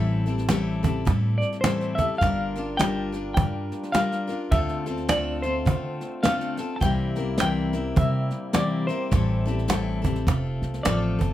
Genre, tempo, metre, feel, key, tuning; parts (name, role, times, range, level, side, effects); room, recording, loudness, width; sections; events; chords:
acoustic folk duo or small band; 104 BPM; 4/4; swing 60% on 8ths; G dorian; A4 = 440 Hz
semi-hollow electric guitar; melody; 0.0-11.3 s; C5 to A5; -28 LUFS; equal; tremolo, plate reverb
picked steel-string acoustic guitar; accompaniment; 0.0-11.3 s; A2 to Bb4; -28 LUFS; left 3 dB
upright bass; bass; 0.0-11.3 s; F1 to D3; -28 LUFS; equal
soft brush drum kit; drums; 0.3-11.3 s; kick drum, snare drum; -29 LUFS; equal
cajon; percussion; 0.5-11.3 s; -24 LUFS; right 2 dB
mellow accordion; sustained chords; 2.2-11.3 s; C3 to Bb4; -37 LUFS; equal
light reverb; -22 LUFS; side -13 dB against mid
0.0-11.3 A section
0.0 Am7; 2.2 Gm7; 4.5 Dm7; 6.8 C7; 9.1 Am7; 10.3 F